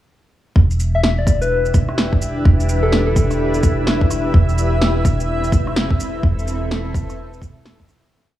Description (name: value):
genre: future garage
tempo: 127 BPM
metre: 4/4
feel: swing 62% on 16ths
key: E minor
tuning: A4 = 440 Hz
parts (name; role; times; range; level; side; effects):
- granular cloud pad; sustained chords; 1.4-8.1 s; C4 to E5; -23 LUFS; left 1 dB; built-in reverb, sidechain pumping
- soft 808-style bass; bass; 0.6-8.1 s; E1; -21 LUFS; equal; tube saturation, sidechain pumping
- electronic kick drum; drums; 0.6-7.9 s; none; -17 LUFS; equal; overdrive, small room ambience
- drifting glass-harmonics texture; texture; 1.1-8.1 s; E4 to E5; -31 LUFS; left 2 dB; chorus, built-in reverb
- electronic shaker, snare drum and rim click; drums; 0.7-8.0 s; none; -22 LUFS; equal; overdrive, small room ambience
- soft struck synth lead; melody; 0.9-3.7 s; A4 to E5; -23 LUFS; left 2 dB; chorus, tremolo, tape echo
room: light reverb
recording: cassette tape, small room ambience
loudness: -15 LUFS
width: side -13 dB against mid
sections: 0.6-8.1 groove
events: fade-out 5.6-8.1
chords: 0.6 Em7; 4.3 Amadd9/E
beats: | 0.56 1.04 1.51 1.98 | 2.46 2.93 3.40 3.87 | 4.34 4.82 5.29 5.76 | 6.23 6.71 7.18 7.65